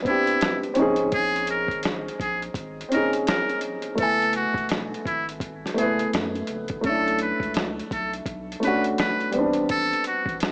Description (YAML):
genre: lo-fi hip hop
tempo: 84 BPM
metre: 4/4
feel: swing 63% on 16ths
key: unclear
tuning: A4 = 442 Hz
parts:
  - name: dark upright piano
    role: accompaniment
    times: 0.0-10.5 s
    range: G3 to G#5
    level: -28 LUFS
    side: equal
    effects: cassette tape
  - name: trumpet with metal mute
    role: melody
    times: 0.1-10.4 s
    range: E4 to B4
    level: -28 LUFS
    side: equal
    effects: none
  - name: lo-fi sampler-style drum kit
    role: drums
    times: 0.1-10.5 s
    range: hi-hat, kick drum, snare drum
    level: -32 LUFS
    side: equal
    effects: vintage 12-bit sampler grit
  - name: warm sub bass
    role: bass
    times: 0.8-10.5 s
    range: E1 to F#2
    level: -41 LUFS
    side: equal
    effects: none
room: moderate plate reverb, RT60 2.7 s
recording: cassette tape, small speaker sound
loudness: -24 LUFS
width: mono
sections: 0.0-10.5 A section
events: none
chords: 0.0 Am11 (rootless); 0.8 A#m11; 4.0 F#m11; 6.8 Bm11; 9.3 Am11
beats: 0.41 | 1.13 1.84 2.56 3.27 | 3.99 4.70 5.42 6.13 | 6.84 7.56 8.27 8.99 | 9.70 10.41